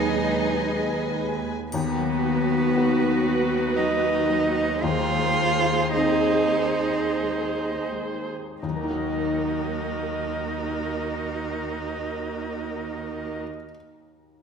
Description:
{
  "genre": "cinematic, emotional film score for orchestra",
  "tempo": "41-59 BPM",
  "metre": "3/4",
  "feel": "rubato",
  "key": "Eb minor",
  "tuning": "A4 = 441 Hz",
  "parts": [
    { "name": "rich studio violin section", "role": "melody", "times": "0.0-1.2 s", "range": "Eb5", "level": "-34 LUFS", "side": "left 2 dB", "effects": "none" },
    { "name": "dark clarinet", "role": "second line", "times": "0.0-1.2 s", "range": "Gb3", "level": "-36 LUFS", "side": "right 2 dB", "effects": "none" },
    { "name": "mellow concert flute", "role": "second line", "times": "0.0-1.2 s", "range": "Eb5", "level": "-36 LUFS", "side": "left 1 dB", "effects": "none" },
    { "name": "rich studio violin section", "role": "second line", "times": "0.0-1.5 s", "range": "Cb5 to Ab5", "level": "-33 LUFS", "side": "left 2 dB", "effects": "none" },
    { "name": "felt-muted upright piano", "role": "accompaniment", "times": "0.0-14.4 s", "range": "Eb2 to Eb5", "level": "-31 LUFS", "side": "left 2 dB", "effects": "none" },
    { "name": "rich studio viola section", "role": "accompaniment", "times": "0.0-13.4 s", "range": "Ab3 to C5", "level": "-29 LUFS", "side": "right 2 dB", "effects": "none" },
    { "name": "dark French horn section", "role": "sustained chords", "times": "0.0-1.4 s", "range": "Ab3 to Cb5", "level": "-30 LUFS", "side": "left 1 dB", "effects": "none" },
    { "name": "concert harp", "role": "arpeggios", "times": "0.0-13.7 s", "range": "Eb3 to Eb5", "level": "-31 LUFS", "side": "left 10 dB", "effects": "none" },
    { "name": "bright studio cello section", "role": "bass", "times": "0.0-13.4 s", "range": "D#2 to Eb4", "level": "-33 LUFS", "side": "right 3 dB", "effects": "none" },
    { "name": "rich studio double bass section", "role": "bass", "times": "0.0-1.5 s", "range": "Eb2", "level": "-32 LUFS", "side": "right 6 dB", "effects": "none" },
    { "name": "rich cello", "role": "melody", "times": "1.7-13.4 s", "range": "B3 to F4", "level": "-26 LUFS", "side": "right 3 dB", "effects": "none" },
    { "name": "triangle", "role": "percussion", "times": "1.7-3.7 s", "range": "none", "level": "-42 LUFS", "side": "equal", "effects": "none" }
  ],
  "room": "wet scoring stage reverb, RT60 1.5 s",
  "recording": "minimal, uncompressed stereo recording",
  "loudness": "-22 LUFS",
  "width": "side -6 dB against mid",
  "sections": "0.0-1.7 A section; 1.7-8.6 B section; 8.6-12.8 C section",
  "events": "slowing down 0.1-8.6",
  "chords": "0.0 Abm7/Eb; 1.7 B/D#; 4.8 Ab/Eb; 8.6 Ebm"
}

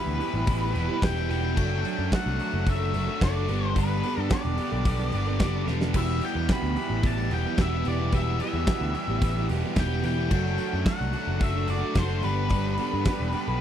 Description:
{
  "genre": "classic rock",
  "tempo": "110 BPM",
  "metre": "4/4",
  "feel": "straight",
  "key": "E minor",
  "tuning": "A4 = 440 Hz",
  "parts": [
    { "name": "octave-fuzz lead guitar", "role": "melody", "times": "0.0-13.6 s", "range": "B4 to B5", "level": "-32 LUFS", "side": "left 4 dB", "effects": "distortion" },
    { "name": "picked steel-string acoustic guitar", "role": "accompaniment", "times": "0.0-13.6 s", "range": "E2 to A4", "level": "-34 LUFS", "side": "right 13 dB", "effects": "none" },
    { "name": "cranked stack guitar", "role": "riff", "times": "0.0-13.6 s", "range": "E2 to G4", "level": "-34 LUFS", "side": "right 15 dB", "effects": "overdrive" },
    { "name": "crunchy overdriven guitar", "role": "riff", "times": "0.0-13.6 s", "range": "E3 to A4", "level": "-33 LUFS", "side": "left 16 dB", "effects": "phaser" },
    { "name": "picked electric bass", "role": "bass", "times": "0.1-13.6 s", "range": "E1 to G2", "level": "-28 LUFS", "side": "equal", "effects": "none" },
    { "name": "huge arena drum kit", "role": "drums", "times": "0.1-13.5 s", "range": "crash cymbal, hi-hat, kick drum, snare drum", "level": "-28 LUFS", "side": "equal", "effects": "none" }
  ],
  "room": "little or no reverb",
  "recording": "dry, close 1970s-style studio recording",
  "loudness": "-23 LUFS",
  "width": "side -10 dB against mid",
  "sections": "0.0-13.6 A section",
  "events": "drum fill 5.7",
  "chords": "0.0 Em; 1.6 D/F#; 3.5 Gadd9; 5.9 Em; 10.3 D/F#; 12.2 Gadd9"
}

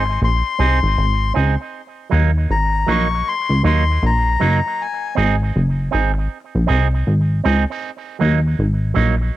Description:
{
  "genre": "dub reggae",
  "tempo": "79 BPM",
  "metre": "4/4",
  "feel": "swing 60% on 16ths",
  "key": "Eb dorian",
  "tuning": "A4 = 440 Hz",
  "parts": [
    { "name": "melodica", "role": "melody", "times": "0.0-5.2 s", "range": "Ab5 to Db6", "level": "-21 LUFS", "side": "left 6 dB", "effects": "cassette tape, tape echo, plate reverb" },
    { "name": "electric guitar with an envelope filter", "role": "accompaniment", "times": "0.0-9.2 s", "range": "Gb3 to Ab4", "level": "-22 LUFS", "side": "right 8 dB", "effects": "tape echo, plate reverb" },
    { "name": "plucky analog bass", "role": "bass", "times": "0.0-9.3 s", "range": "Gb1 to Eb2", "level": "-16 LUFS", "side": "equal", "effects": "none" }
  ],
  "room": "light reverb",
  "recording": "home recording on cassette",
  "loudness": "-15 LUFS",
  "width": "side -14 dB against mid",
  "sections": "0.0-9.4 A section",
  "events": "none",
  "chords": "0.0 Ab; 1.7 Ebm; 4.8 Ab; 7.8 Ebm"
}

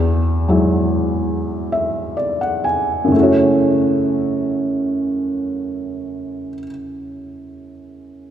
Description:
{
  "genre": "folk",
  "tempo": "59-80 BPM",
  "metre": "4/4",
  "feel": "straight",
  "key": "F# minor",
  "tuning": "A4 = 438 Hz",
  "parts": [
    { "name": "felt-muted upright piano", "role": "solo", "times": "0.0-8.3 s", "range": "E2 to G#5", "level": "-17 LUFS", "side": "equal", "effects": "none" }
  ],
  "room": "wet church reverb, RT60 3.5 s",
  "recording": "recorded in a church or concert hall",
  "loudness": "-16 LUFS",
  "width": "side -10 dB against mid",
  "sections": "0.0-3.1 A section; 3.1-7.1 B section",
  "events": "slowing down 0.0-3.1",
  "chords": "0.0 Eadd9; 3.1 F#m7"
}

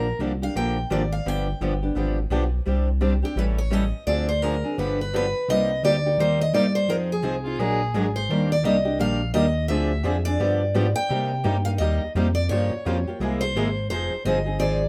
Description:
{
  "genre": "acoustic string swing (jazz manouche)",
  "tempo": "171 BPM",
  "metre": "4/4",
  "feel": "swing 60% on 8ths",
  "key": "C minor",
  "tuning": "A4 = 441 Hz",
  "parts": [
    { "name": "picked steel-string acoustic guitar", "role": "melody", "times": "0.0-14.9 s", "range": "G4 to G5", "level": "-28 LUFS", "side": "equal", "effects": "none" },
    { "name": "picked steel-string acoustic guitar", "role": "accompaniment", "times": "0.0-14.8 s", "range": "C3 to Bb4", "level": "-30 LUFS", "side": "equal", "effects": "none" },
    { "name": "picked swing-style acoustic guitar", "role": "accompaniment", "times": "0.0-14.8 s", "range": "C3 to Bb4", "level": "-33 LUFS", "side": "equal", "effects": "none" },
    { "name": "smooth synth bass", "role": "bass", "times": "0.0-14.9 s", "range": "F1 to C3", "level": "-27 LUFS", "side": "equal", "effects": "none" },
    { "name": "warm violin", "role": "second line", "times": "7.4-8.1 s", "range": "F4 to Ab4", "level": "-31 LUFS", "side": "equal", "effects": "none" }
  ],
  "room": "moderate studio reverb, RT60 0.7 s",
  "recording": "none",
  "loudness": "-23 LUFS",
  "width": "mono",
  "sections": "0.0-5.5 A section; 5.5-14.9 B section",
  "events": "none",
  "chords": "0.0 Bb6; 1.3 G7; 2.7 Csus2; 3.4 A7; 4.1 Dm7b5; 4.8 G7; 5.5 Cm7; 6.9 Fm7; 7.6 Bbaug7; 8.3 Ebmaj9; 9.7 Dm7b5; 10.4 G7b9; 11.1 Cm7; 12.5 Gm7b5; 13.2 Caug7; 13.9 Fm9"
}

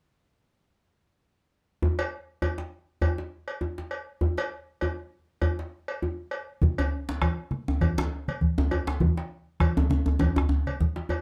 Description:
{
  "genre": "west african traditional, West African drum ensemble",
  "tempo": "100 BPM",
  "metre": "4/4",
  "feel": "swing 56% on 16ths",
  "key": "none",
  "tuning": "none",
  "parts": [
    { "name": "djembe", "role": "percussion", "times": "1.8-11.2 s", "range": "none", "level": "-30 LUFS", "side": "equal", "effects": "none" },
    { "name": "cowbell", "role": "percussion", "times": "2.0-11.2 s", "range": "none", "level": "-36 LUFS", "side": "equal", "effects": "none" },
    { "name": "bombo", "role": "percussion", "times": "6.6-11.2 s", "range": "none", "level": "-30 LUFS", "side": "equal", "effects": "none" },
    { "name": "congas", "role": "percussion", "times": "6.6-11.1 s", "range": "none", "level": "-32 LUFS", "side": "equal", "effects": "none" },
    { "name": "djembe", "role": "percussion", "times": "6.8-10.7 s", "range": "none", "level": "-28 LUFS", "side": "equal", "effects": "none" }
  ],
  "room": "moderate studio reverb, RT60 0.5 s",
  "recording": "dark, warm production",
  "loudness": "-28 LUFS",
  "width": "mono",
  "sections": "1.8-6.6 A section; 6.6-11.2 B section",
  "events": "none",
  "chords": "none"
}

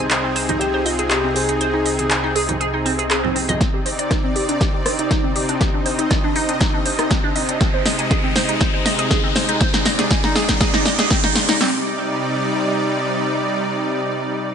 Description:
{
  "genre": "progressive house",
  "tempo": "120 BPM",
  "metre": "4/4",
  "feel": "straight",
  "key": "C minor",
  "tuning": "A4 = 440 Hz",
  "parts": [
    { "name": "dark baby grand piano", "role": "melody", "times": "0.0-3.1 s", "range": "F4 to C5", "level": "-25 LUFS", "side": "left 2 dB", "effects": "sidechain pumping, ping-pong delay" },
    { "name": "supersaw pad", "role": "sustained chords", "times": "0.0-14.5 s", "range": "C3 to Eb5", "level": "-22 LUFS", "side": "equal", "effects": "sidechain pumping" },
    { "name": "glassy wavetable pluck", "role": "arpeggios", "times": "0.0-11.8 s", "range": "C4 to C6", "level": "-23 LUFS", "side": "right 1 dB", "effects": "chorus, phaser, cassette tape, sidechain pumping, digital delay" },
    { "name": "fat analog bass", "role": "bass", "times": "0.0-3.6 s", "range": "C2", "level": "-29 LUFS", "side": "equal", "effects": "sidechain pumping" },
    { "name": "deep house drum kit", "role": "drums", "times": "0.1-11.6 s", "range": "handclaps, hi-hat, rim click, snare drum", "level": "-21 LUFS", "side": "equal", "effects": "none" },
    { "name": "congas", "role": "percussion", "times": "0.5-3.6 s", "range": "none", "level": "-28 LUFS", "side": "right 4 dB", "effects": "sidechain pumping on perc" },
    { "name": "swell and riser", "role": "sound effects", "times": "2.8-11.6 s", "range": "none", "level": "-27 LUFS", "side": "equal", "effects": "none" },
    { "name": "deep house drum kit", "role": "drums", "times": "3.6-11.7 s", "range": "hi-hat, kick drum, snare drum", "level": "-20 LUFS", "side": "equal", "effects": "none" }
  ],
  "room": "moderate lush hall reverb, RT60 1.8 s, digital ambience",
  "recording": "nothing above 10.4 kHz",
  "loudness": "-16 LUFS",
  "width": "side -7 dB against mid",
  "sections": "0.0-3.6 A section; 3.6-11.6 B section; 11.6-14.5 C section",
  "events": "swell 2.8-3.6; build-up 3.6-11.6; drum fill 3.6-11.6; filter sweep on synth arpeggio sound 3.6-11.6; riser 5.8-11.6",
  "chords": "0.0 Ab/C; 3.6 Cmadd9; 7.6 Ab/C; 11.6 Cmadd9"
}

